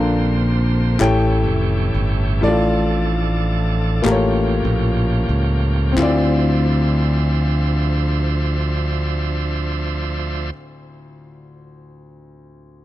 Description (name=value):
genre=slow gospel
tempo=28-46 BPM (dotted quarters)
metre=6/8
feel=straight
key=D minor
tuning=A4 = 440 Hz
part: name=warm grand piano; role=accompaniment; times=0.0-12.8 s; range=D2 to G5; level=-21 LUFS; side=left 2 dB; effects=none
part: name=bright tonewheel organ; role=sustained chords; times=0.0-10.5 s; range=D3 to E5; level=-26 LUFS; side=right 4 dB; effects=fast rotary speaker, overdrive
part: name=modern bright fingered electric bass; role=bass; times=0.0-10.5 s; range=F1 to D2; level=-19 LUFS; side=equal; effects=none
part: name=group handclap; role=percussion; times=1.0-6.7 s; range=none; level=-28 LUFS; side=left 5 dB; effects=none
room=small room reverb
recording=dry, close 1970s-style studio recording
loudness=-16 LUFS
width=side -14 dB against mid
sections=0.0-6.0 A section; 6.0-10.3 B section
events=slowing down 0.0-6.0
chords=0.0 Bbmaj9; 1.0 A7; 2.4 Dm/A; 4.0 A7b9b13; 6.0 Dm9